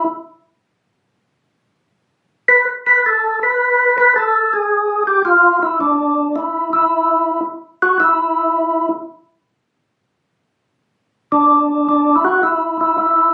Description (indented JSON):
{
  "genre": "jazz",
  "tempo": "109 BPM",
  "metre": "4/4",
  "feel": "swing 69% on 8ths",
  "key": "unclear",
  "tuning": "A4 = 440 Hz",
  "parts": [
    { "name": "percussive tonewheel organ", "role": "solo", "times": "0.0-13.3 s", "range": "D4 to B4", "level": "-15 LUFS", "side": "equal", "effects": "slow rotary speaker, overdrive, chorus vibrato" }
  ],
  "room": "moderate studio reverb, RT60 0.6 s",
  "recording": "recorded on a phone in the room, club ambience, compression",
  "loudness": "-15 LUFS",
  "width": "mono",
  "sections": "0.0-13.3 A section",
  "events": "none",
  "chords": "none"
}